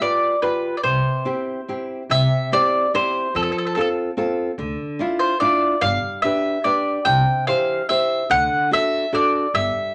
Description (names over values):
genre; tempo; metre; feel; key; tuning
italian folk, Italian serenade; 145 BPM; 3/4; straight; C major; A4 = 439 Hz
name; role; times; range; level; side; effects
mandolin; melody; 0.0-9.9 s; A4 to G5; -22 LUFS; equal; none
nylon-string guitar; accompaniment; 0.0-9.9 s; C3 to C5; -26 LUFS; equal; none
upright bass; bass; 0.8-9.7 s; G1 to F2; -26 LUFS; equal; none
room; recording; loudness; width
wet small room reverb, RT60 0.5 s; none; -20 LUFS; mono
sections
0.0-2.1 A section; 2.1-9.9 A section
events
none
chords
0.0 G7; 0.8 C; 3.4 F; 4.6 Dmadd9; 5.8 G; 7.1 C; 8.3 D